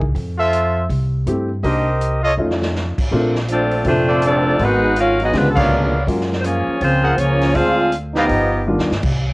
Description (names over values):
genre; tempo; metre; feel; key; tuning
jazz, big band swing; 162 BPM; 4/4; swing 63% on 8ths; F major; A4 = 439 Hz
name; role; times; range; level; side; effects
upright bass; bass; 0.0-9.3 s; F1 to G2; -20 LUFS; equal; none
swinging big-band drum kit; drums; 0.0-9.1 s; crash cymbal, hi-hat, kick drum, snare drum; -25 LUFS; equal; cassette tape
warm trumpet section; stabs; 0.4-8.3 s; Cb4 to Gb5; -19 LUFS; equal; cassette tape
warm baby grand piano; accompaniment; 1.3-8.9 s; Bb2 to G4; -21 LUFS; left 1 dB; cassette tape
clear saxophone section; melody; 3.5-8.6 s; Ab3 to Gb5; -18 LUFS; left 1 dB; cassette tape
bright trombone section; second line; 3.5-8.6 s; Cb3 to Gb4; -20 LUFS; right 1 dB; cassette tape
room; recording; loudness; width
light reverb, small room ambience; home recording on cassette; -15 LUFS; side -23 dB against mid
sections
0.0-3.1 A section; 3.1-9.3 B section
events
drum fill 2.4-2.7, 8.7-9.0; band accent 5.5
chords
0.1 Fmaj7; 1.6 Cm7; 2.4 Faug7; 3.1 Bbmaj9; 4.6 Abm7; 5.3 Db7b9; 6.1 Gbmaj9; 7.6 Dm7b5; 8.3 G7b13